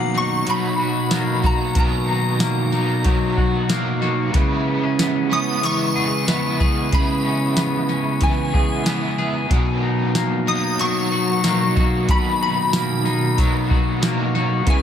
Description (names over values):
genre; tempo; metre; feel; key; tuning
dream pop; 93 BPM; 4/4; straight; B major; A4 = 437 Hz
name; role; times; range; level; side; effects
shimmering bell with halo; melody; 0.0-14.8 s; F#5 to D#6; -24 LUFS; left 2 dB; ensemble chorus, phaser, tape echo
overdriven semi-hollow guitar; accompaniment; 0.0-14.8 s; B2 to B4; -27 LUFS; right 3 dB; tremolo, ensemble chorus
mellow tonewheel organ; sustained chords; 0.0-14.8 s; B2 to B4; -24 LUFS; right 2 dB; slow rotary speaker
electric guitar at the edge of break-up; arpeggios; 0.0-14.8 s; B2 to G#4; -23 LUFS; left 2 dB; wide subtle chorus, tape echo
soft vintage rhythm box; drums; 0.5-14.8 s; hi-hat, kick drum, snare drum, tambourine; -21 LUFS; equal; overdrive, tape echo
room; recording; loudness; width
light reverb; echo-heavy mix; -17 LUFS; side -9 dB against mid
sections
0.0-14.8 A section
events
none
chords
0.0 Bmaj7; 4.3 C#m7; 9.5 Bmaj7